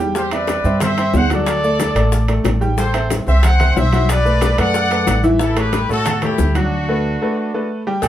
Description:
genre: latin, salsa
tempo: 183 BPM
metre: 4/4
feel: straight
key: unclear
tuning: A4 = 440 Hz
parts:
  - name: bright upright piano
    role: accompaniment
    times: 0.0-8.1 s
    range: E3 to G5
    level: -21 LUFS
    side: equal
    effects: none
  - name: upright bass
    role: bass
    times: 0.0-8.1 s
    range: A1 to A2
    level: -18 LUFS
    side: equal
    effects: none
  - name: bongos and cowbell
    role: percussion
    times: 0.1-8.1 s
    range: none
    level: -24 LUFS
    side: left 5 dB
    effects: none
  - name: bright trumpet section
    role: melody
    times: 0.2-7.7 s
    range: D4 to F#5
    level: -20 LUFS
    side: equal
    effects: none
  - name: congas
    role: percussion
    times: 0.2-8.1 s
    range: none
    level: -26 LUFS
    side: left 1 dB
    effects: none
  - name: maracas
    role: percussion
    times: 0.2-8.1 s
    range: none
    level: -35 LUFS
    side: left 5 dB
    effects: none
  - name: timbales and agogo bells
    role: percussion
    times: 0.3-8.1 s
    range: none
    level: -26 LUFS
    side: right 4 dB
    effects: none
room: wet studio ambience, RT60 0.4 s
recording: band playing live in one room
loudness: -14 LUFS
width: side -12 dB against mid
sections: 0.0-8.0 A section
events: break 6.7-8.0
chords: 0.2 C/E; 1.5 D; 2.8 Am7; 4.1 Bm7; 5.4 A; 6.7 D6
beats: | 0.15 0.48 0.81 1.14 | 1.47 1.79 2.12 2.45 | 2.78 3.10 3.43 3.76 | 4.09 4.42 4.75 5.07 | 5.40 5.73 6.06 6.39 | 6.71 7.04 7.37 7.70 | 8.03

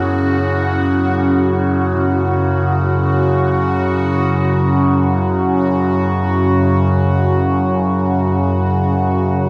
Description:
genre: dark ambient drone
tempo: free time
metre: none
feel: none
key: unclear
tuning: A4 = 440 Hz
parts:
  - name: deep dark ambient pad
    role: sustained chords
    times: 0.0-9.5 s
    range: C#4 to F#5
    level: -22 LUFS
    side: equal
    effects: chorus, built-in reverb
  - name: bronze singing bowl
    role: arpeggios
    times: 0.0-9.4 s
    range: C#3 to E4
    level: -26 LUFS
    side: equal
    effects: none
  - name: overtone-sweeping drone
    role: drone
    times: 0.0-9.5 s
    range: F#2 to C#3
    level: -18 LUFS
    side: equal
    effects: chorus, built-in reverb
  - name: bubbling stepped-filter texture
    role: texture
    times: 0.0-9.5 s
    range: F#4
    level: -27 LUFS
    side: equal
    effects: chorus, built-in reverb
room: wet cathedral reverb, RT60 5.1 s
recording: dark, warm production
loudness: -16 LUFS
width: mono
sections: 0.0-9.5 A section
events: none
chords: 0.0 F#5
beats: free time

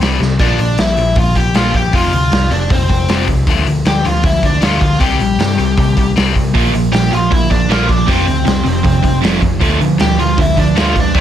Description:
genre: punk rock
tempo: 156 BPM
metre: 4/4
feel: straight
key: unclear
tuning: A4 = 441 Hz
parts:
  - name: overdriven semi-hollow guitar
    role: riff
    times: 0.0-11.2 s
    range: F2 to C4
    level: -17 LUFS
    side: left 6 dB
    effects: none
  - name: overdriven picked electric bass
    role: bass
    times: 0.0-11.2 s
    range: F1 to G2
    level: -17 LUFS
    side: right 1 dB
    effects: none
  - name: raw garage drum kit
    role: drums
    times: 0.0-11.2 s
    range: hi-hat, kick drum, snare drum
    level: -16 LUFS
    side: right 1 dB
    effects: none
  - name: bluesy overdriven lead guitar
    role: melody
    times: 0.4-11.2 s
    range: C4 to G5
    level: -18 LUFS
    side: left 1 dB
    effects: distortion
  - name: biting overdriven guitar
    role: riff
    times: 6.5-11.2 s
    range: F2 to C4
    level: -17 LUFS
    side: right 14 dB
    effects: none
room: light reverb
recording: none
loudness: -11 LUFS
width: side -10 dB against mid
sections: 0.0-11.2 A section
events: drum fill 0.2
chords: 0.4 Bb; 1.9 F5; 3.5 Dm; 5.0 C5; 6.5 Bb; 8.1 F5; 9.6 Dm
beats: 0.01 | 0.40 0.78 1.17 1.55 | 1.93 2.32 2.70 3.09 | 3.47 3.86 4.24 4.62 | 5.01 5.39 5.78 6.16 | 6.55 6.93 7.31 7.70 | 8.08 8.46 8.85 9.23 | 9.61 10.00 10.38 10.76 | 11.15

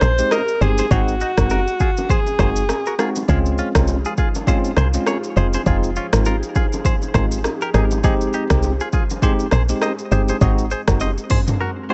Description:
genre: afrobeats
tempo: 101 BPM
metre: 4/4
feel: swing 58% on 16ths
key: Ab major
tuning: A4 = 441 Hz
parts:
  - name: warm alto saxophone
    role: melody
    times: 0.0-3.0 s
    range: Gb4 to C5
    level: -24 LUFS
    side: equal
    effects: none
  - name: direct-recorded clean electric guitar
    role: riff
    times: 0.0-11.9 s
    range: Db4 to Eb5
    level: -29 LUFS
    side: equal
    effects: delay
  - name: woody log drum bass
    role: bass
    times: 0.0-11.2 s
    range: F1 to Db2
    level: -21 LUFS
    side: equal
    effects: none
  - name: deep house drum kit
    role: drums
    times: 0.0-11.6 s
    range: hi-hat, kick drum, rim click, shaker, toms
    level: -22 LUFS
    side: equal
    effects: overdrive
  - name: bongos and congas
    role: percussion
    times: 0.0-11.6 s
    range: none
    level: -33 LUFS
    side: equal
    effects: none
  - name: bell-like tine electric piano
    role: accompaniment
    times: 0.2-11.9 s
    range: Ab3 to G4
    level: -26 LUFS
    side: equal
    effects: none
  - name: glassy FM pad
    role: sustained chords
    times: 3.9-11.9 s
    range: F3 to C5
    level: -34 LUFS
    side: equal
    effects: none
room: digital ambience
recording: nothing above 7.9 kHz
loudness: -19 LUFS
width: mono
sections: 0.0-3.3 A section; 3.3-11.9 B section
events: break 11.6-11.9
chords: 0.0 Abmaj7; 0.9 Ab7; 3.3 Dbmaj7; 5.4 Fm7; 7.7 Abmaj7; 10.4 Ab7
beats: 0.31 | 0.91 1.50 2.10 2.69 | 3.28 3.88 4.47 5.07 | 5.66 6.25 6.85 7.44 | 8.04 8.63 9.22 9.82 | 10.41 11.01 11.60

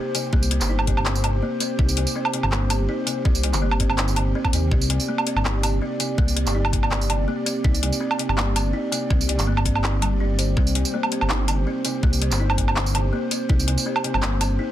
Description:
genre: half-time drum and bass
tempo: 164 BPM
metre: 4/4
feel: swing 54% on 16ths, half-time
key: C minor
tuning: A4 = 443 Hz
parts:
  - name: dark analog pad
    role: sustained chords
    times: 0.0-14.7 s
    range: C4 to D5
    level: -28 LUFS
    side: right 1 dB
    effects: chorus, sidechain pumping
  - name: buzzing kalimba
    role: arpeggios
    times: 0.0-14.7 s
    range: C3 to C5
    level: -28 LUFS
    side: left 2 dB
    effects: ping-pong delay
  - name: drum and bass drum kit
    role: drums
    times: 0.1-14.5 s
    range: handclaps, hi-hat, tambourine, woodblock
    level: -25 LUFS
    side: right 1 dB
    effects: soft clipping on snare
  - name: dark detuned saw bass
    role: bass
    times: 0.3-14.6 s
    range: G1 to Eb2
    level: -22 LUFS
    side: equal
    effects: none
  - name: electronic kick drum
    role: drums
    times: 0.3-13.6 s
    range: none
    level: -21 LUFS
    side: equal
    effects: none
room: little or no reverb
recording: dense, heavily limited modern master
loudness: -19 LUFS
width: side -12 dB against mid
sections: 0.0-14.7 A section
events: none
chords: 0.0 Cm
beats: | 0.33 0.69 1.06 1.42 | 1.79 2.15 2.52 2.89 | 3.25 3.62 3.98 4.35 | 4.71 5.08 5.45 5.81 | 6.18 6.54 6.91 7.28 | 7.64 8.01 8.37 8.74 | 9.11 9.47 9.84 10.20 | 10.57 10.93 11.30 11.67 | 12.03 12.40 12.76 13.13 | 13.49 13.86 14.23 14.59

